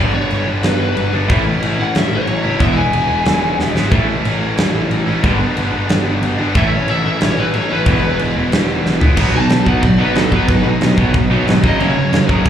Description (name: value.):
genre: punk rock.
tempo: 183 BPM.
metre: 4/4.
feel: straight.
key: B major from 9.2 s.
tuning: A4 = 440 Hz.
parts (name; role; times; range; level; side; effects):
lead guitar through a small cranked amp; melody; 0.0-3.7, 6.6-12.5 s; G#4 to A5; -22 LUFS; left 2 dB; overdrive, slapback echo, tape echo.
crunchy overdriven guitar; riff; 0.0-12.5 s; E2 to B3; -21 LUFS; left 8 dB; none.
distorted electric guitar; riff; 0.0-12.5 s; E2 to B3; -18 LUFS; right 7 dB; distortion.
distorted electric guitar; riff; 0.0-12.5 s; F#2 to E4; -20 LUFS; equal; overdrive, slapback echo.
fuzz picked electric bass; bass; 0.0-12.5 s; E1 to B2; -19 LUFS; equal; overdrive.
big rock drum kit; drums; 0.3-12.5 s; crash cymbal, kick drum, snare drum, toms; -18 LUFS; equal; none.
room: small room reverb.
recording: live gig heard through the venue's PA, club reverb.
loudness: -13 LUFS.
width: side -9 dB against mid.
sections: 0.0-9.2 A section; 9.2-12.5 B section.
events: half time 0.0-9.2; drum fill 3.6-3.9, 8.8-9.2; lead electric guitar solo 9.2-12.5.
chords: 0.0 G; 1.3 A; 2.6 E; 3.9 A; 5.2 G; 6.6 A; 7.9 E; 9.2 B; 11.6 F#.